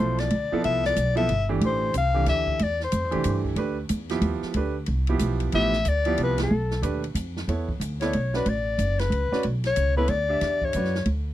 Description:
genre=modal jazz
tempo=184 BPM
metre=3/4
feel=swing 62% on 8ths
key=A minor, E dorian from 7.5 s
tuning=A4 = 438 Hz
part: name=breathy soprano saxophone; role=melody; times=0.0-3.4, 5.6-11.1 s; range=A4 to F5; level=-25 LUFS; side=left 4 dB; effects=none
part: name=clear concert grand piano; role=accompaniment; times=0.0-10.9 s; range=B2 to E5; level=-28 LUFS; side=right 4 dB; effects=none
part: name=upright bass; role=bass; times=0.0-11.3 s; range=F#1 to G2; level=-25 LUFS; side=equal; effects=none
part: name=open jazz drum kit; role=drums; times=0.2-11.2 s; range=hi-hat, kick drum, ride cymbal, snare drum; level=-36 LUFS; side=equal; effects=none
room=little or no reverb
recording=dry, close 1970s-style studio recording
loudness=-22 LUFS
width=side -13 dB against mid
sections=0.0-7.5 A section; 7.5-11.3 B section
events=band accent 6.3; soprano saxophone solo 7.5-11.3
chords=0.0 Am11; 3.6 Dm11; 6.5 B7alt; 7.5 E13sus4

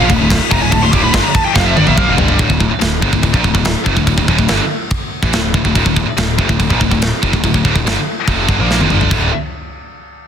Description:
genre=heavy metal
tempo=143 BPM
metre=4/4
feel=straight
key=D minor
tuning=A4 = 444 Hz
part: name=high-gain lead guitar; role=melody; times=0.0-2.1 s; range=D5 to D6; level=-18 LUFS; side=equal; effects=distortion, ping-pong delay
part: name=heavy high-gain guitar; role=riff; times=0.0-9.3 s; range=D2 to Bb3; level=-19 LUFS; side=left 13 dB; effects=distortion
part: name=heavy high-gain guitar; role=riff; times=0.0-9.3 s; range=D2 to Bb3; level=-18 LUFS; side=right 14 dB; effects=distortion
part: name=heavy high-gain guitar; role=riff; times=0.0-2.4 s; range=D2 to Bb3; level=-21 LUFS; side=left 1 dB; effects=none
part: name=fuzz picked electric bass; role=bass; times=0.0-9.3 s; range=D1 to Bb1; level=-18 LUFS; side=equal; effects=overdrive
part: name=tight metal drum kit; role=drums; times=0.1-9.2 s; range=crash cymbal, kick drum, ride cymbal, snare drum, toms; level=-15 LUFS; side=equal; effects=none
room=studio reverb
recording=dense, heavily limited modern master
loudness=-11 LUFS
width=side -8 dB against mid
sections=0.0-2.4 A section; 2.4-9.1 B section; 9.1-10.3 C section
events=lead electric guitar solo 0.0-2.4; drum fill 1.6-2.4, 8.7-9.1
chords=0.0 Dm; 9.1 D5

